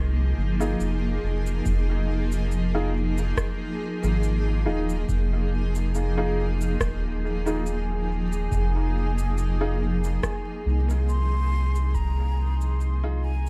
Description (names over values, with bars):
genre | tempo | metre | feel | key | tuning
ambient dub | 70 BPM | 4/4 | swing 55% on 16ths | F minor | A4 = 442 Hz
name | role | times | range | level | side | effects
granular cloud pad | sustained chords | 0.0-13.5 s | F3 to Ab4 | -33 LUFS | equal | built-in reverb
round analog bass | bass | 0.0-13.5 s | Eb1 to C2 | -27 LUFS | equal | none
warm upright piano | stabs | 0.6-13.3 s | Eb4 to Ab4 | -35 LUFS | equal | dub echo
electronic cabasa and rim click | drums | 0.6-13.5 s | none | -37 LUFS | equal | overdrive, studio reverb, dub echo
electronic kick drum | drums | 1.7-12.1 s | none | -31 LUFS | equal | studio reverb
bubbling stepped-filter texture | texture | 7.2-13.5 s | Ab4 | -40 LUFS | equal | chorus, built-in reverb
breathy mellow silver concert flute | melody | 11.1-13.5 s | Ab5 to C6 | -37 LUFS | equal | dub echo
room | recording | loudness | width
light reverb | echo-heavy mix, vinyl crackle | -25 LUFS | mono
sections
0.0-13.5 A section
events
fade-out 9.7-13.5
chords
0.0 Fm7